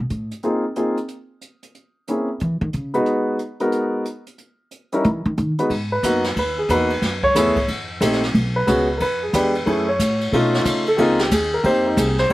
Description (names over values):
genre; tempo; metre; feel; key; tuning
jazz piano trio; 182 BPM; 4/4; swing 64% on 8ths; G# minor; A4 = 440 Hz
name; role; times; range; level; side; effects
upright bass; bass; 0.0-0.3, 2.4-2.9, 5.0-12.3 s; A1 to E3; -23 LUFS; equal; none
jazz brush drum kit; drums; 0.1-12.3 s; hi-hat, kick drum, ride cymbal, snare drum; -27 LUFS; equal; none
warm upright piano; melody; 0.4-12.3 s; G3 to C#5; -18 LUFS; equal; none
room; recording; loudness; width
little or no reverb; none; -18 LUFS; side -17 dB against mid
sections
0.0-5.7 A section; 5.7-12.3 A section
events
upright bass solo 0.0-5.7; upright piano solo 5.7-12.3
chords
0.4 A#9sus4; 1.7 A#m7b5; 2.4 C#m9; 3.1 G#m7; 4.4 N.C.; 5.0 Emaj7(no3); 5.7 G#m7; 7.0 F#m11; 7.7 F9; 8.3 Bsus2; 9.0 Fdim7; 9.7 F#m7; 10.3 B9; 11.0 C#maj13